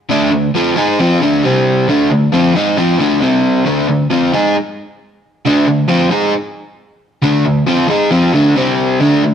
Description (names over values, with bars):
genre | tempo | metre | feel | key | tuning
rock | 134 BPM | 4/4 | straight | unclear | A4 = 436 Hz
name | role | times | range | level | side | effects
crunchy overdriven guitar | solo | 0.1-9.3 s | C3 to G#4 | -11 LUFS | equal | none
room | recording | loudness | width
moderate stone room reverb, RT60 1.4 s | rough rehearsal-room recording | -11 LUFS | side -8 dB against mid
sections
0.0-9.3 A section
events
none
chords
0.0 D5; 1.4 C5; 1.9 D5; 3.2 C5; 3.7 D5; 8.6 C5